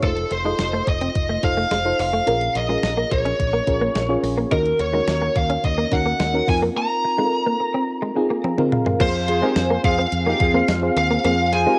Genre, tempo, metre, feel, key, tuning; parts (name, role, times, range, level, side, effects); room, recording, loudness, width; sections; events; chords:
1980s-style pop; 107 BPM; 4/4; straight; A4 = 441 Hz
lead guitar through a small cranked amp; melody; 0.0-11.8 s; A4 to Bb5; -25 LUFS; equal; overdrive
mellow FM electric piano; accompaniment; 0.0-11.8 s; Bb2 to Bb5; -26 LUFS; equal; chorus, cassette tape
direct-recorded clean electric guitar; riff; 0.0-11.7 s; Ab3 to Eb4; -28 LUFS; equal; ensemble chorus, cassette tape
mellow fretless electric bass; bass; 0.0-11.6 s; F1 to F2; -28 LUFS; equal
clean 12-bit digital drum machine; drums; 0.0-11.7 s; crash cymbal, hi-hat, kick drum, snare drum, tambourine, toms; -27 LUFS; equal; cassette tape
analog synth brass; stabs; 9.3-11.8 s; C4 to C5; -28 LUFS; equal; chorus, cassette tape
moderate studio reverb, RT60 0.6 s; home recording on cassette; -20 LUFS; mono
0.0-9.0 A section; 9.0-11.8 B section
FM electric piano fill 8.2-9.0; drum fill 8.4-9.0
0.0 F7; 2.3 Bbm7; 4.5 Ebm7; 6.5 F7sus4; 9.0 Fm